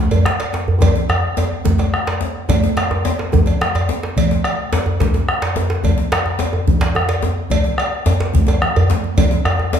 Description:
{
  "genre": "west african traditional, West African drum ensemble",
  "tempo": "144 BPM (dotted quarters)",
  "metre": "12/8",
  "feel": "straight",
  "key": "none",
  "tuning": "none",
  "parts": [
    { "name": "cowbell", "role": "percussion", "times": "0.1-9.8 s", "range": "none", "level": "-27 LUFS", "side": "right 1 dB", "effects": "none" },
    { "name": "djembe", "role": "percussion", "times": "0.1-9.8 s", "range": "none", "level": "-23 LUFS", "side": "left 3 dB", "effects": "none" },
    { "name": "djembe", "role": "percussion", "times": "0.1-9.8 s", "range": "none", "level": "-18 LUFS", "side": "right 1 dB", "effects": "none" },
    { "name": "bombo", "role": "percussion", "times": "0.3-9.8 s", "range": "none", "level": "-19 LUFS", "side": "left 1 dB", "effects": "none" },
    { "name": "congas", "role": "percussion", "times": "0.8-9.3 s", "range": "none", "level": "-23 LUFS", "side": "right 3 dB", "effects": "none" }
  ],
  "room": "wet large studio reverb, RT60 1.2 s",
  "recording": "band playing live in one room",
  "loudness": "-15 LUFS",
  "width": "side -8 dB against mid",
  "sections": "0.0-2.5 A section; 2.5-9.8 B section",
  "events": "drum fill 0.8-2.5, 8.5-9.2",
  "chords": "none"
}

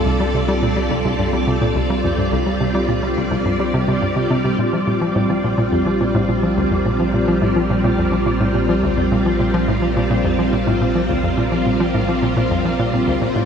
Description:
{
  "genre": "ambient, sequencer-driven space music",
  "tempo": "106 BPM",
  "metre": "4/4",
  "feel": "straight",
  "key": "unclear",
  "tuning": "A4 = 436 Hz",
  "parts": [
    { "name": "string machine, full ensemble", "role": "sustained chords", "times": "0.0-13.5 s", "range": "G3 to D5", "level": "-18 LUFS", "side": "equal", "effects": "ensemble chorus" },
    { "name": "warm sub bass", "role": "bass", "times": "0.0-13.5 s", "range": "Bb1 to C2", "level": "-26 LUFS", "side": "equal", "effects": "none" },
    { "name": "hollow square pluck", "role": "riff", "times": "0.1-13.5 s", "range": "C2 to G3", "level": "-20 LUFS", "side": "equal", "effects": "chorus, ping-pong delay" }
  ],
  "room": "wet plate reverb, RT60 3.5 s",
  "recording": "none",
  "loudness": "-16 LUFS",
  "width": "side -7 dB against mid",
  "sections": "0.0-13.5 A section",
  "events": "none",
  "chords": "0.0 C5; 4.6 Bbmaj7"
}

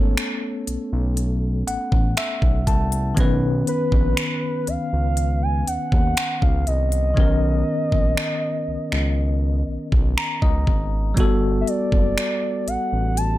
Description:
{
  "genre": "contemporary R&B",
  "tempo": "60 BPM",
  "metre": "4/4",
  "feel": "straight",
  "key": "unclear",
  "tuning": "A4 = 440 Hz",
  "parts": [
    { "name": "bell-like tine electric piano", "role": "accompaniment", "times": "0.0-13.4 s", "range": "D#3 to A#5", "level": "-25 LUFS", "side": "left 2 dB", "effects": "fast stereo tremolo" },
    { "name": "smooth synth bass", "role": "bass", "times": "0.0-13.4 s", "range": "F#1 to D#2", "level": "-22 LUFS", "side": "equal", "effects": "none" },
    { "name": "smooth R&B drum kit", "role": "drums", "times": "0.2-13.4 s", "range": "finger snaps, hi-hat, kick drum", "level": "-21 LUFS", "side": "equal", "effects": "none" },
    { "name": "gliding portamento lead", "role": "melody", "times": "3.7-13.4 s", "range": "B4 to A5", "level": "-26 LUFS", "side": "right 1 dB", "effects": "chorus, tape echo" }
  ],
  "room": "little or no reverb",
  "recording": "none",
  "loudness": "-19 LUFS",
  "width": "side -15 dB against mid",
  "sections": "0.0-13.4 A section",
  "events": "tine electric piano fill 1.2-3.2, 9.7-11.2; hi-hats muted 7.2-11.2",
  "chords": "0.0 Aadd9; 3.2 Bmaj9; 11.2 Gmaj9"
}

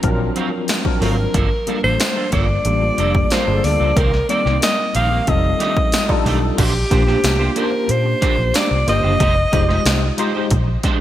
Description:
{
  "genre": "polished 1980s jazz-funk pop",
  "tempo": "92 BPM",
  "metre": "4/4",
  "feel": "straight",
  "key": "Bb major",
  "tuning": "A4 = 441 Hz",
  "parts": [
    { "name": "clear alto saxophone", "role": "melody", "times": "0.0-10.2 s", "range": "G4 to F5", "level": "-20 LUFS", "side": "equal", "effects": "none" },
    { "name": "barky tine electric piano", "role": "accompaniment", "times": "0.0-10.5 s", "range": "D3 to C5", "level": "-22 LUFS", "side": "left 2 dB", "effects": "medium stereo tremolo, ensemble chorus" },
    { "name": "vintage muted fingered electric bass", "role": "bass", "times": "0.0-10.8 s", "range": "F1 to Bb2", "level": "-19 LUFS", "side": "equal", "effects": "none" },
    { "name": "punchy analog drum machine", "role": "drums", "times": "0.0-11.0 s", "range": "crash cymbal, hi-hat, kick drum, snare drum", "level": "-20 LUFS", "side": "equal", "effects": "gated reverb" },
    { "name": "electric guitar at the edge of break-up", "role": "riff", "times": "0.2-11.0 s", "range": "Eb3 to D5", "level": "-26 LUFS", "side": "right 6 dB", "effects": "ensemble chorus" },
    { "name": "tambourine", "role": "percussion", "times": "0.7-10.0 s", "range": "none", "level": "-32 LUFS", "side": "left 3 dB", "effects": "none" }
  ],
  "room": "light reverb",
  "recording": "bright 1980s-style digital production",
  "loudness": "-15 LUFS",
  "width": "side -12 dB against mid",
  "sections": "0.0-6.6 A section; 6.6-11.0 B section",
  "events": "none",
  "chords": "0.0 D7alt; 1.3 Gm9; 4.0 Cm7; 5.3 F13; 6.6 Bb69; 9.2 Fm9; 10.5 Bb13"
}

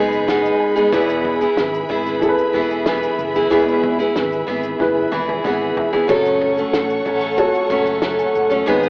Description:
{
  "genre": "acoustic pop",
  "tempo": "93 BPM",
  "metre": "4/4",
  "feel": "straight",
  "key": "E major",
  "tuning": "A4 = 439 Hz",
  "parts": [
    { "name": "dark upright piano", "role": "accompaniment", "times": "0.0-8.9 s", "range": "D#4 to B5", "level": "-21 LUFS", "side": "equal", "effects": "none" },
    { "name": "picked steel-string acoustic guitar", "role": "accompaniment", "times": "0.0-8.9 s", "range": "E2 to A4", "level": "-18 LUFS", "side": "equal", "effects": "none" },
    { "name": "warm symphonic string section", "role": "sustained chords", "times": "0.0-8.9 s", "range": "G#4 to D#6", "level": "-24 LUFS", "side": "equal", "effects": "none" },
    { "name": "mellow fretless electric bass", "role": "bass", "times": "0.0-8.9 s", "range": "E1 to A1", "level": "-32 LUFS", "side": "equal", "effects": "none" },
    { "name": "natural country drum kit", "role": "drums", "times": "0.1-8.9 s", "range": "kick drum, shaker, snare drum, toms", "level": "-26 LUFS", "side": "equal", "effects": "none" }
  ],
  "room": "light reverb",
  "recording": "worn, warbling old tape, cassette tape, warbly pitch drift, AM radio sound",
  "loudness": "-15 LUFS",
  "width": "side -35 dB against mid",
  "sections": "0.0-8.9 A section",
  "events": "upright piano fill 0.0-0.9, 4.8-6.1; drum fill 4.8-6.1",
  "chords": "0.0 G#m; 0.9 E; 6.1 F#m"
}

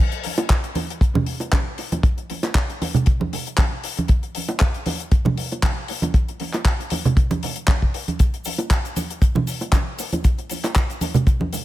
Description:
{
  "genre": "nu-disco",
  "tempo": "117 BPM",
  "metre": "4/4",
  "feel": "swing 55% on 16ths",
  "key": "none",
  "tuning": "none",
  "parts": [
    { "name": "damped 70s drum kit", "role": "drums", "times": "0.1-11.6 s", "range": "handclaps, hi-hat", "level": "-27 LUFS", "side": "left 2 dB", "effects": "studio reverb" },
    { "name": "bongos, congas and cabasa", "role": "percussion", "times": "0.4-11.6 s", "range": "none", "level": "-24 LUFS", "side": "right 2 dB", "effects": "analog delay" },
    { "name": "kick drum", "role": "drums", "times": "0.5-11.4 s", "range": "none", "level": "-18 LUFS", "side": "equal", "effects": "studio reverb" }
  ],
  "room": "studio reverb",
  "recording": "echo-heavy mix",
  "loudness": "-19 LUFS",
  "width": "side -15 dB against mid",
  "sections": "0.0-11.6 A section",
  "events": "none",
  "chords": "none"
}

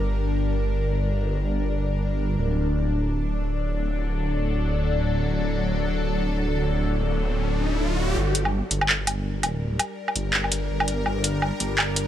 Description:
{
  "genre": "half-time drum and bass",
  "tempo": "166 BPM",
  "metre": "4/4",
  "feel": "swing 58% on 16ths, half-time",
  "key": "G harmonic minor",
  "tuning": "A4 = 440 Hz",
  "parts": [
    { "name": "bowed-like drone", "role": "sustained chords", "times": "0.0-12.1 s", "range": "F#3 to Bb4", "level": "-28 LUFS", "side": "left 2 dB", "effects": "built-in reverb, phaser" },
    { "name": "phased detuned saw bass", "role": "bass", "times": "0.0-12.1 s", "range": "D1 to G1", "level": "-24 LUFS", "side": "equal", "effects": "phaser" },
    { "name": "riser", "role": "sound effects", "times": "6.5-8.2 s", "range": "none", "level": "-31 LUFS", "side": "equal", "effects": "none" },
    { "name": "drum and bass drum kit", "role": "drums", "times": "8.3-12.0 s", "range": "handclaps, hi-hat, woodblock", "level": "-23 LUFS", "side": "equal", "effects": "none" }
  ],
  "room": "little or no reverb",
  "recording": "none",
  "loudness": "-22 LUFS",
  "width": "side -11 dB against mid",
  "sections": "0.0-8.2 A section; 8.2-12.1 B section",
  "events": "riser 6.5-8.2; build-up 8.2-12.1",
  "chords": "0.0 Gm; 2.4 D; 8.2 Gm"
}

